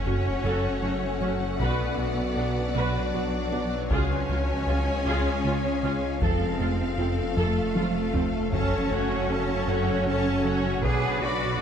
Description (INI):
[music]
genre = cinematic, hybrid orchestral and electronic film score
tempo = 52 BPM (dotted quarters)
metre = 6/8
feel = straight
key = F# harmonic minor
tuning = A4 = 440 Hz
[part]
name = rich symphonic violin section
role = second line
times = 0.0-11.6 s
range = A4 to B5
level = -34 LUFS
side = left 4 dB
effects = none
[part]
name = clear French horn section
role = sustained chords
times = 0.0-11.6 s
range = E#4 to D5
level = -34 LUFS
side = left 6 dB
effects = none
[part]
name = swarming drone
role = sustained chords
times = 0.2-11.6 s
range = C#3 to E#5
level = -33 LUFS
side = equal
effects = built-in reverb
[part]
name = detuned saw bass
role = bass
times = 0.0-11.6 s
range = F1 to C#2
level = -34 LUFS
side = equal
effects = none
[part]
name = rich symphonic cello section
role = bass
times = 0.0-11.6 s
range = F#3 to G#4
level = -31 LUFS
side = right 1 dB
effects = none
[part]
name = sub drop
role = sound effects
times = 0.0-1.6 s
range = none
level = -38 LUFS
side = left 1 dB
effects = none
[part]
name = rich symphonic viola section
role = accompaniment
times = 0.1-11.6 s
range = C4 to D5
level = -32 LUFS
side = right 2 dB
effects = none
[part]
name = harp-like synth pluck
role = arpeggios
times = 0.1-11.5 s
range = C#3 to B4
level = -35 LUFS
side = right 2 dB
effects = chorus, phaser, tape echo
[part]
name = round analog bass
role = riff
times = 0.1-11.6 s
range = C#2 to B3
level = -31 LUFS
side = right 1 dB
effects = none
[part]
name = rich studio double bass section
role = bass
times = 0.1-11.6 s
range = F#1 to F#2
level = -36 LUFS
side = right 3 dB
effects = none
[part]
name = taiko ensemble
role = drums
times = 1.6-11.6 s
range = none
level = -32 LUFS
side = left 1 dB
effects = none
[sound]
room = wet scoring stage reverb, RT60 1.6 s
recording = none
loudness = -23 LUFS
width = side -8 dB against mid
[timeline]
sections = 0.0-11.6 A section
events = impact 0.0-1.6; drum fill 7.4-8.5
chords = 0.0 F#m; 1.6 Bm; 3.9 C#; 6.2 F; 8.5 F#m; 10.8 Bm